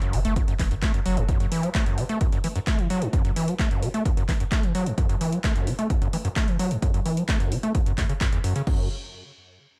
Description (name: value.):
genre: driving peak-time techno.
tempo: 130 BPM.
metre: 4/4.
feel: straight.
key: F# minor.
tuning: A4 = 440 Hz.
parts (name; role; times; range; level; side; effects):
overdriven acid bass; riff; 0.0-8.9 s; E2 to A3; -28 LUFS; equal; distortion, sidechain pumping, analog delay.
techno drum kit; drums; 0.0-8.8 s; crash cymbal, handclaps, hi-hat; -36 LUFS; equal; sidechain pumping on hats, small room reverb, sidechain pumping on cymbals.
saturated sub bass; bass; 0.1-1.3 s; F#1; -28 LUFS; equal; overdrive, sidechain pumping, low-pass filter.
electronic kick drum; drums; 0.4-8.8 s; none; -26 LUFS; equal; small room reverb.
room: light reverb.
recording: none.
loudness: -24 LUFS.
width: mono.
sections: 0.0-8.7 A section; 8.7-9.8 B section.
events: filter sweep on acid bass 0.0-8.7.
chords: 0.0 F#5; 8.7 N.C..